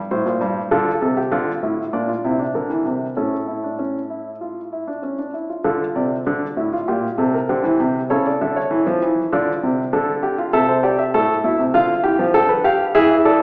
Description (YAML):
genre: classical, baroque-style 3-part fugue for grand piano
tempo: 98 BPM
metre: 4/4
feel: straight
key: D minor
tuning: A4 = 437 Hz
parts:
  - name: warm grand piano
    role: solo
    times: 0.0-13.4 s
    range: G2 to G5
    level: -16 LUFS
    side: equal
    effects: none
room: wet recital hall reverb, RT60 1.7 s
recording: heard from further back in the room, small speaker sound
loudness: -16 LUFS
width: side -30 dB against mid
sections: 0.0-5.6 A section; 5.6-13.4 B section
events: none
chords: 0.0 D5; 0.7 Dm; 1.9 Bbadd9; 3.2 A; 5.6 Dm; 6.9 Gm/Bb; 8.1 A/C#; 9.3 Dm; 10.5 Am/C; 11.7 Dm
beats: 0.10 | 0.71 1.32 1.93 2.54 | 3.16 3.79 4.41 5.03 | 5.65 6.26 6.88 7.49 | 8.10 8.71 9.32 9.93 | 10.54 11.14 11.75 12.35 | 12.96